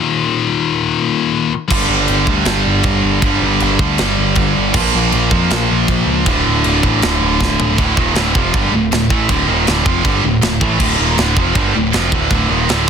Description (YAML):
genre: heavy metal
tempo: 158 BPM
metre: 4/4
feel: straight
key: D phrygian, D minor from 7.8 s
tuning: A4 = 439 Hz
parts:
  - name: scooped high-gain guitar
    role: riff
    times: 0.0-12.9 s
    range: D2 to Bb3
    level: -17 LUFS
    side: left 7 dB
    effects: distortion
  - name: heavy high-gain guitar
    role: riff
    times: 1.7-12.9 s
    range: D2 to Bb3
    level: -17 LUFS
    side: right 17 dB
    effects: distortion
  - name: growling picked electric bass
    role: bass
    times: 1.7-12.9 s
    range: D1 to F2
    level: -19 LUFS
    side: right 1 dB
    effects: overdrive
  - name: tight metal drum kit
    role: drums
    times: 1.7-12.9 s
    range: china cymbal, crash cymbal, kick drum, snare drum, toms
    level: -18 LUFS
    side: equal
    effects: soft clipping on kick, soft clipping on snare
room: studio reverb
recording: dense, heavily limited modern master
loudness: -12 LUFS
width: side -7 dB against mid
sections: 0.0-7.8 A section; 7.8-12.9 B section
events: half time 0.0-7.8; drum fill 7.4-7.8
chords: 0.0 Eb5; 1.7 G5; 4.8 Bb5; 6.3 D5; 7.8 Dm